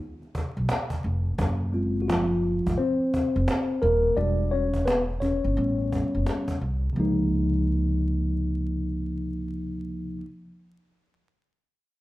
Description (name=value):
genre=hip hop, jazz-hop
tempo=86 BPM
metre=4/4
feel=swing 64% on 16ths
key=Db major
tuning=A4 = 441 Hz
part: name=cajon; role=drums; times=0.2-6.9 s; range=none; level=-31 LUFS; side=equal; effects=none
part: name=upright bass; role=bass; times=0.6-10.2 s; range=Eb1 to Db2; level=-27 LUFS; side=equal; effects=none
part: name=mellow tine electric piano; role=accompaniment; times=1.7-10.2 s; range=C3 to D5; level=-25 LUFS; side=left 1 dB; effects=slow stereo tremolo
room=moderate large studio reverb, RT60 1.2 s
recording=band playing live in one room, vinyl crackle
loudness=-23 LUFS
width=side -17 dB against mid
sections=0.0-7.0 A section; 7.0-9.8 B section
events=tine electric piano solo 0.0-7.0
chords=0.0 Db7 (rootless); 1.4 Gbmaj9#11; 4.2 Em7; 5.6 A7; 7.0 Db69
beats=0.68 | 1.38 2.08 2.77 3.47 | 4.17 4.87 5.57 6.26 | 6.96 7.66 8.36 9.05